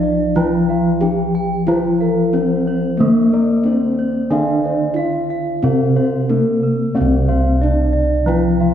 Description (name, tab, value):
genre	Javanese gamelan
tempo	91 BPM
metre	4/4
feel	straight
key	C slendro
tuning	A4 = 440 Hz
part	gamelan-type bronze metallophone	melody	0.0-8.7 s	Bb3-45c to G4+25c	-20 LUFS	left 2 dB	none
part	gamelan-type bronze metallophone	accompaniment	0.0-8.7 s	C3 to Bb3-45c	-19 LUFS	equal	none
part	gamelan-type bossed gongs	arpeggios	0.0-8.7 s	Bb4-45c to G5+25c	-24 LUFS	left 2 dB	none
part	gamelan-type bronze metallophone	arpeggios	0.0-8.7 s	Bb4-45c to G5+25c	-25 LUFS	right 4 dB	none
part	gamelan-type bossed gongs	bass	0.0-8.7 s	C2 to F4-35c	-20 LUFS	right 1 dB	none
room	wet concert hall reverb, RT60 2.3 s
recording	heard from further back in the room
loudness	-14 LUFS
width	side -9 dB against mid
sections	0.0-8.7 A section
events	none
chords	none